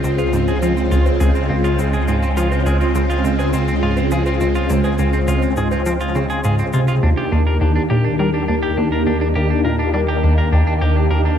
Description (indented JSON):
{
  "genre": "ambient, sequencer-driven space music",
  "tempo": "103 BPM",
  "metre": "4/4",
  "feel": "straight",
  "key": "unclear",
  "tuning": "A4 = 443 Hz",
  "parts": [
    { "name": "phased string machine", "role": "sustained chords", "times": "0.0-11.4 s", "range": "Db3 to G4", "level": "-19 LUFS", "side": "equal", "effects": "ensemble chorus, phaser" },
    { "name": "clean electric guitar", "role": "arpeggios", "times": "0.0-11.4 s", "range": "C4 to Bb4", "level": "-25 LUFS", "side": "right 1 dB", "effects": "auto-pan, low-pass filter, ping-pong delay" },
    { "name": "plucky analog bass", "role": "riff", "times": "0.0-11.3 s", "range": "Db2 to G3", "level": "-19 LUFS", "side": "equal", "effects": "lush chorus, ping-pong delay" },
    { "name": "warm sub bass", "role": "bass", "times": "0.0-11.4 s", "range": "Db2 to Eb2", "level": "-22 LUFS", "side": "equal", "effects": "none" },
    { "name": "shaker and bongos", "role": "percussion", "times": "0.0-7.0 s", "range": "none", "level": "-32 LUFS", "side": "right 3 dB", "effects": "overdrive, ping-pong delay" }
  ],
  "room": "wet plate reverb, RT60 3.3 s",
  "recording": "dreamy mix soaked in reverb",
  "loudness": "-15 LUFS",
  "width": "side -9 dB against mid",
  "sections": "0.0-7.0 A section; 7.0-11.4 A section",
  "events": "none",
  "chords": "0.0 Dbmaj7; 7.0 Ebmaj7"
}